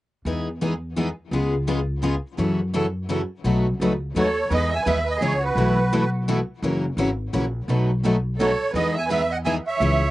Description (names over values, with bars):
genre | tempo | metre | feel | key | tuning
acoustic string swing (jazz manouche) | 170 BPM | 3/4 | swing 62% on 8ths | E major | A4 = 440 Hz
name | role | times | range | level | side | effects
picked steel-string acoustic guitar | accompaniment | 0.3-10.0 s | B2 to G#4 | -25 LUFS | left 3 dB | slapback echo
picked steel-string acoustic guitar | accompaniment | 0.3-10.0 s | B2 to B4 | -28 LUFS | right 4 dB | none
upright bass | bass | 0.3-10.1 s | F#1 to F#2 | -25 LUFS | equal | none
musette accordion | melody | 4.2-6.1, 8.4-10.1 s | B4 to G#5 | -24 LUFS | right 2 dB | none
rich violin | second line | 4.2-6.1, 8.4-10.1 s | F#4 to E5 | -27 LUFS | right 3 dB | none
room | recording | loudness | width
little or no reverb | recorded outdoors, with no room sound, nothing above 10.4 kHz | -20 LUFS | side -16 dB against mid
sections
0.3-4.5 A section; 4.5-10.1 B section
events
none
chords
0.3 Emaj7; 1.3 C#7; 2.4 F#m7; 3.4 B7; 4.5 Emaj7; 5.6 B7sus4; 6.6 F#7; 7.7 B7; 8.7 Emaj7